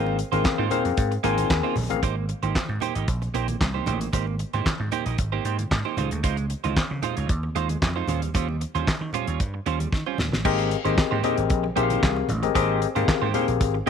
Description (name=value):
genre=early-eighties boogie funk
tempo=114 BPM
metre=4/4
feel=straight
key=Ab major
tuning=A4 = 442 Hz
part: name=barky tine electric piano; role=accompaniment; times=0.0-2.0, 10.4-13.9 s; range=C4 to Ab5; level=-24 LUFS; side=left 13 dB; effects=overdrive, tube saturation
part: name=clean electric guitar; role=riff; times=0.0-13.9 s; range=G3 to Eb5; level=-29 LUFS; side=right 15 dB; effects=analog chorus
part: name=vintage slap bass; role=bass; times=0.0-13.9 s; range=Ab1 to Eb3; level=-27 LUFS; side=right 1 dB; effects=none
part: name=congas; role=percussion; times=0.1-13.9 s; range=none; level=-35 LUFS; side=equal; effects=none
part: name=damped 70s drum kit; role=drums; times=0.2-13.9 s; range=crash cymbal, handclaps, hi-hat, kick drum, snare drum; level=-26 LUFS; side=equal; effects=none
room=light reverb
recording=1960s-style stereo with parts hard left and right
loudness=-22 LUFS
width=side -7 dB against mid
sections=0.0-2.0 A section; 2.0-10.4 B section; 10.4-13.9 A section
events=drum fill 9.9-10.4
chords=0.0 Ab69; 2.0 Abmaj9; 6.0 Dbmaj9; 8.1 Eb13; 10.4 Abmaj9